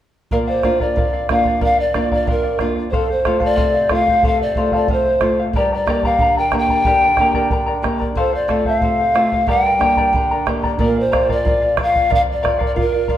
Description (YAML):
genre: andean folk, Andean ensemble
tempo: 91 BPM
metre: 2/4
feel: straight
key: unclear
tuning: A4 = 440 Hz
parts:
  - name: mellow hollow polished pan flute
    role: melody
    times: 0.3-13.2 s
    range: A4 to G5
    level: -17 LUFS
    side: equal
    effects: none
  - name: charango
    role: accompaniment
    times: 0.3-13.2 s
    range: G4 to Bb5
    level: -22 LUFS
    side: left 4 dB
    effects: none
  - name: nylon-string guitar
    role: accompaniment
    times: 0.3-13.2 s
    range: F2 to G4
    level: -24 LUFS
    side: right 2 dB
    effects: none
  - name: bombo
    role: percussion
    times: 0.3-13.2 s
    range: none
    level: -22 LUFS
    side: right 1 dB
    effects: none
room: wet large studio reverb, RT60 1.4 s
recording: band playing live in one room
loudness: -14 LUFS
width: side -11 dB against mid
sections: 0.3-10.8 A section; 10.8-13.2 A section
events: none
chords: 0.3 Bb; 2.9 F; 5.6 Gm; 8.2 F; 9.5 Gm; 10.8 Bb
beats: | 0.30 0.95 | 1.61 2.27 | 2.92 3.58 | 4.24 4.89 | 5.55 6.21 | 6.87 7.52 | 8.18 8.83 | 9.49 10.14 | 10.80 11.45 | 12.11 12.76